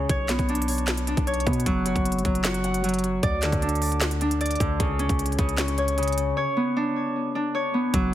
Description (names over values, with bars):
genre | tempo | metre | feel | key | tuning
hip hop, trap | 153 BPM | 4/4 | half-time | unclear | A4 = 442 Hz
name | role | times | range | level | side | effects
Celtic harp | arpeggios | 0.0-8.1 s | C#3 to F#5 | -24 LUFS | equal | ping-pong delay
hard-hitting 808-style bass | bass | 0.0-8.1 s | F#1 to B2 | -28 LUFS | equal | none
trap drum kit | drums | 0.1-8.0 s | handclaps, hi-hat, kick drum, snare drum | -27 LUFS | equal | none
room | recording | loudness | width
little or no reverb | heavily compressed radio sound, multiband compression | -22 LUFS | side -12 dB against mid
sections
0.0-7.9 A section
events
none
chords
0.1 Bmadd9; 1.7 N.C.; 6.4 Bmadd9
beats
| 0.09 0.49 0.88 1.27 | 1.66 2.06 2.45 2.84 | 3.23 3.62 4.02 4.41 | 4.80 5.19 5.58 5.98 | 6.37 6.76 7.15 7.54 | 7.94